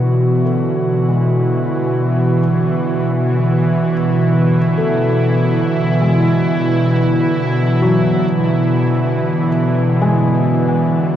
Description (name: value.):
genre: ambient.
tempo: free time.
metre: none.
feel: none.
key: E mixolydian.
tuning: A4 = 441 Hz.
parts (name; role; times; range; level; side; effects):
airy breathy pad; sustained chords; 0.0-11.2 s; B2 to F#4; -15 LUFS; equal; chorus.
felt-muted upright piano; arpeggios; 0.0-11.2 s; F#3 to B3; -23 LUFS; left 2 dB; tape echo.
bowed-like drone; drone; 0.0-11.2 s; E3 to E4; -20 LUFS; right 2 dB; built-in reverb.
room: wet scoring stage reverb, RT60 2.1 s.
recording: worn, warbling old tape, cassette tape, warbly pitch drift.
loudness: -13 LUFS.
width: side -10 dB against mid.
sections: 0.0-11.2 A section.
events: fade-in on felt piano 0.0-11.2.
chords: 0.0 Esus4.